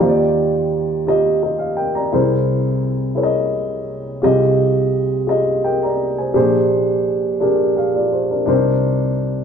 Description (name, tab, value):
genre	gospel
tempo	57 BPM (dotted quarters)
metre	6/8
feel	straight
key	Eb major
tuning	A4 = 440 Hz
part	dark upright piano	solo	0.0-9.4 s	Bb1 to Bb5	-15 LUFS	equal	none
room	wet studio reverb, RT60 0.9 s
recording	band playing live in one room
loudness	-15 LUFS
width	side -7 dB against mid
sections	0.0-9.4 A section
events	none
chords	0.0 Ebmaj9; 2.1 C7alt; 4.2 Fm9/C; 6.3 Bb13; 8.5 Cm9